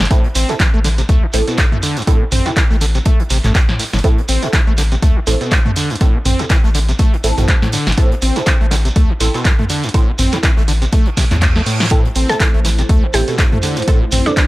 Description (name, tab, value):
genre	acid house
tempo	122 BPM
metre	4/4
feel	swing 56% on 16ths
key	A minor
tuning	A4 = 440 Hz
part	acid bass, saw	riff	0.0-14.4 s	G2 to C4	-21 LUFS	equal	tube saturation, analog chorus, analog delay
part	round analog bass	bass	0.0-14.2 s	G1 to A2	-16 LUFS	equal	sidechain pumping
part	natural country drum kit	drums	0.0-14.5 s	hi-hat, snare drum	-31 LUFS	right 2 dB	none
part	punchy analog drum machine	drums	0.0-14.5 s	handclaps, hi-hat, snare drum, toms	-20 LUFS	equal	none
part	shekere	percussion	0.0-14.5 s	none	-26 LUFS	right 2 dB	none
part	filtered dub chord stab	stabs	0.1-14.3 s	C4 to A4	-24 LUFS	right 2 dB	phaser, ensemble chorus, analog delay
part	electronic kick drum	drums	0.1-14.5 s	none	-13 LUFS	equal	none
part	reverse cymbal	sound effects	11.1-11.9 s	none	-26 LUFS	right 5 dB	none
part	dark analog pad	sustained chords	12.3-14.5 s	A3 to C5	-25 LUFS	right 2 dB	chorus, sidechain pumping
part	mallet-like synth pluck	melody	12.3-14.5 s	D4 to A4	-21 LUFS	right 1 dB	chorus, analog delay
room	little or no reverb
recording	none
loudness	-12 LUFS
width	side -18 dB against mid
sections	0.0-14.5 A section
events	reverse cymbal 11.1-11.9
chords	0.0 Am